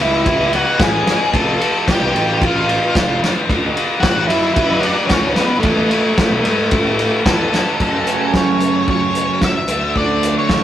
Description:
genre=indie rock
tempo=112 BPM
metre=4/4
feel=straight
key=unclear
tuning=A4 = 440 Hz
part: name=octave-fuzz lead guitar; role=melody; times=0.0-10.6 s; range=A3 to E5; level=-18 LUFS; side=equal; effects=distortion
part: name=scooped high-gain guitar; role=riff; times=0.0-10.6 s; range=F#2 to F#4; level=-22 LUFS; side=left 4 dB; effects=distortion
part: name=twelve-string electric guitar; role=riff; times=0.0-10.6 s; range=E2 to F#4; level=-24 LUFS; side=right 4 dB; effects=none
part: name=fuzz picked electric bass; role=bass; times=0.0-10.6 s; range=F1 to A2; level=-24 LUFS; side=right 1 dB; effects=overdrive
part: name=vintage drum kit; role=drums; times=0.0-10.6 s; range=crash cymbal, hi-hat, kick drum, ride cymbal, snare drum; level=-17 LUFS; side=equal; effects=none
room=moderate small room reverb, RT60 0.5 s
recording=rough rehearsal-room recording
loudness=-13 LUFS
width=side -11 dB against mid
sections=0.0-7.8 A section; 7.8-10.6 B section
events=none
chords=0.0 Aadd9; 1.3 Fmaj7; 3.5 D6; 5.6 Esus4; 7.8 F#m; 9.7 D

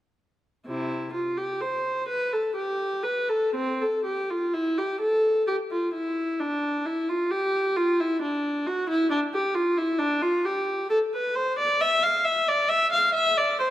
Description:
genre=classical, baroque-style suite movement for unaccompanied viola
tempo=57-68 BPM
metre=3/4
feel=rubato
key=unclear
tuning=A4 = 439 Hz
part: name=warm viola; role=solo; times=0.7-13.7 s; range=C3 to F5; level=-23 LUFS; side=equal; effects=none
room=wet recital hall reverb, RT60 1.8 s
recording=none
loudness=-23 LUFS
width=side -13 dB against mid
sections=0.7-13.7 A section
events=none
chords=none

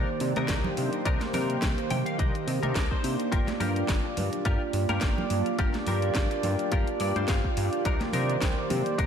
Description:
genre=nu-disco, nu disco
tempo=106 BPM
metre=4/4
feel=swing 55% on 16ths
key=G minor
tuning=A4 = 440 Hz
part: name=warm analog pad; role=accompaniment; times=0.0-9.1 s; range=Eb3 to D5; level=-29 LUFS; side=right 2 dB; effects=chorus, sidechain pumping, diffuse ambient delay
part: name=direct-recorded clean electric guitar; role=riff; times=0.0-9.1 s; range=D4 to G5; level=-34 LUFS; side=left 4 dB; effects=ensemble chorus, diffuse ambient delay
part: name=fat analog bass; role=bass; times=0.0-9.1 s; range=G1 to C3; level=-30 LUFS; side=equal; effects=tube saturation
part: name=house drum kit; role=drums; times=0.2-9.1 s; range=hi-hat, snare drum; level=-36 LUFS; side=equal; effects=none
part: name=congas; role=percussion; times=0.4-8.8 s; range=none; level=-37 LUFS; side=right 2 dB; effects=none
part: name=electronic kick drum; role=drums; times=0.5-9.1 s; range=none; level=-28 LUFS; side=equal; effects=none
room=moderate lush hall reverb, RT60 1.6 s, digital ambience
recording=dreamy mix soaked in reverb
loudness=-25 LUFS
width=side -8 dB against mid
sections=0.0-9.1 A section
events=clean electric guitar fill 1.6-3.3, 6.7-7.9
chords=0.0 Cm9; 3.3 Gm7; 7.9 Cm9

